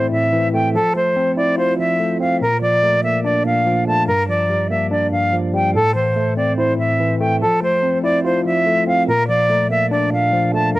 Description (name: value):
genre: hip hop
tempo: 144 BPM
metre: 4/4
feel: half-time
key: unclear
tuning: A4 = 440 Hz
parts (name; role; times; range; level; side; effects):
- bright concert flute; melody; 0.0-10.8 s; A4 to A5; -17 LUFS; equal; cassette tape, plate reverb
- mellow tine electric piano; accompaniment; 0.0-10.8 s; G2 to F4; -19 LUFS; equal; medium stereo tremolo, cassette tape
room: moderate booth ambience, RT60 0.2 s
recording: home recording on cassette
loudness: -15 LUFS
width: side -18 dB against mid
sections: 0.0-5.7 A section; 5.7-10.8 B section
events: none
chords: 0.0 Am; 0.7 Fmaj7; 2.4 Bbmaj7; 4.1 Gm7; 5.7 Am; 7.4 Fmaj7; 9.1 Bbmaj7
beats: 0.33 | 0.75 1.16 1.58 2.00 | 2.41 2.83 3.25 3.66 | 4.08 4.50 4.91 5.33 | 5.75 6.16 6.58 7.00 | 7.41 7.83 8.25 8.66 | 9.08 9.50 9.91 10.33 | 10.75